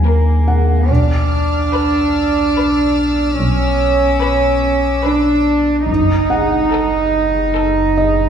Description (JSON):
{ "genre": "cinematic", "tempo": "72 BPM", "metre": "3/4", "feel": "straight", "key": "unclear", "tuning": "A4 = 440 Hz", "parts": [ { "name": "dark studio cello section", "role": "bass", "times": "0.0-8.3 s", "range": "Bb3 to Eb4", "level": "-15 LUFS", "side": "right 2 dB", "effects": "none" }, { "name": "deep rumbling drone", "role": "drone", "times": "0.0-8.3 s", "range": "Gb1 to Eb2", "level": "-18 LUFS", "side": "left 1 dB", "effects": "built-in reverb" }, { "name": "felt-muted upright piano", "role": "texture", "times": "0.0-8.3 s", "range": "Eb5 to Ab5", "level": "-23 LUFS", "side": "left 2 dB", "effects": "none" }, { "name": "rich studio violin section", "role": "melody", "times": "0.1-8.2 s", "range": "A4 to B4", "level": "-26 LUFS", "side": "left 6 dB", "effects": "none" }, { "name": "warm symphonic double bass section", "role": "bass", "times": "0.9-6.6 s", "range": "Gb1 to B1", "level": "-20 LUFS", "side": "equal", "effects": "none" }, { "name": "warm symphonic violin section", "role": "texture", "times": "0.9-5.4 s", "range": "D6 to F6", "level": "-26 LUFS", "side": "left 5 dB", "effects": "none" } ], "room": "wet recital hall reverb, RT60 1.4 s", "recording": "recorded in a church or concert hall", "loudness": "-12 LUFS", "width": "side -8 dB against mid", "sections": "0.0-8.3 A section", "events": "none", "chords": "0.0 Ebm; 0.9 Bm; 5.9 Gbm" }